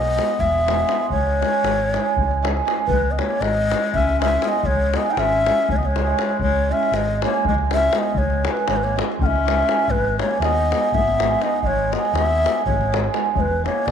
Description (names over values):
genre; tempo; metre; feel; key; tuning
balkan folk, Balkan wedding band; 240 BPM (eighths); 7/8; straight; C# minor; A4 = 440 Hz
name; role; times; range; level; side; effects
breathy low ney; melody; 0.0-13.9 s; B4 to G5; -22 LUFS; left 1 dB; none
warm clarinet; second line; 0.0-13.9 s; G#3 to D#4; -27 LUFS; left 8 dB; none
hammered dulcimer; accompaniment; 0.0-13.9 s; G#3 to G#4; -24 LUFS; right 12 dB; none
fingered electric bass; bass; 0.0-13.9 s; E1 to D#2; -24 LUFS; equal; none
davul; percussion; 0.2-13.9 s; none; -26 LUFS; left 6 dB; none
room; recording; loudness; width
moderate echo chamber reverb, RT60 2.2 s; 1960s-style stereo with parts hard left and right; -17 LUFS; side -8 dB against mid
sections
0.0-2.9 A section; 2.9-13.9 A section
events
speeding up 0.0-13.9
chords
0.0 E; 1.1 C#m; 9.9 G#m; 13.3 E